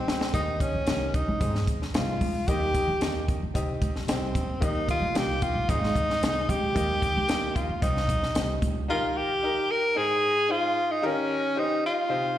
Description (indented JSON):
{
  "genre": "uptempo 1960s-style soul",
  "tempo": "112 BPM",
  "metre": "4/4",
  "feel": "straight",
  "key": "Eb mixolydian",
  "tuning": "A4 = 440 Hz",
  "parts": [
    { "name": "breathy tenor saxophone", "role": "melody", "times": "0.0-12.4 s", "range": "C4 to Bb4", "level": "-26 LUFS", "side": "equal", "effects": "slapback echo" },
    { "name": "clear grand piano", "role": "accompaniment", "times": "0.0-12.4 s", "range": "Ab2 to Eb5", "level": "-33 LUFS", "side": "left 3 dB", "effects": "slapback echo" },
    { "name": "upright bass", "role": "bass", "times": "0.0-8.8 s", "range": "Ab1 to Ab2", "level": "-30 LUFS", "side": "right 1 dB", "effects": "none" },
    { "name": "compact cocktail drum kit", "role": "drums", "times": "0.1-8.8 s", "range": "hi-hat, kick drum, snare drum", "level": "-29 LUFS", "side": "equal", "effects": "slapback echo" }
  ],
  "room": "light reverb",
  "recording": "live gig heard through the venue's PA, recital hall reverb",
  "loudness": "-24 LUFS",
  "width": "side -12 dB against mid",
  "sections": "0.0-8.9 A section; 8.9-12.4 B section",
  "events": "drum fill 0.0-0.3",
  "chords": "0.0 Cm; 1.4 Ab; 2.5 Eb; 3.6 Cm; 4.6 Eb; 5.7 Ab; 6.8 Eb; 7.8 Cm; 8.9 Eb; 10.0 Ab; 11.0 Eb"
}